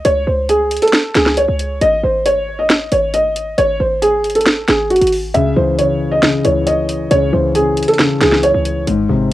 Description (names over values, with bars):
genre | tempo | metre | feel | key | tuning
hip hop, trap | 136 BPM | 4/4 | half-time | C# harmonic minor | A4 = 441 Hz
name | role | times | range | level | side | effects
felt-muted upright piano | melody | 0.0-8.8 s | F#4 to E5 | -14 LUFS | equal | cassette tape, tape echo
short 808-style bass | bass | 0.0-9.3 s | G#1 to C#2 | -21 LUFS | equal | none
trap drum kit | drums | 0.1-9.0 s | hi-hat, snare drum | -16 LUFS | right 1 dB | cassette tape
dark concert grand piano | accompaniment | 5.3-9.3 s | G#2 to C#5 | -16 LUFS | left 3 dB | cassette tape
room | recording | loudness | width
light reverb | home recording on cassette | -12 LUFS | side -15 dB against mid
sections
0.0-9.3 A section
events
none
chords
0.0 C#5; 1.8 G#5; 5.3 C#m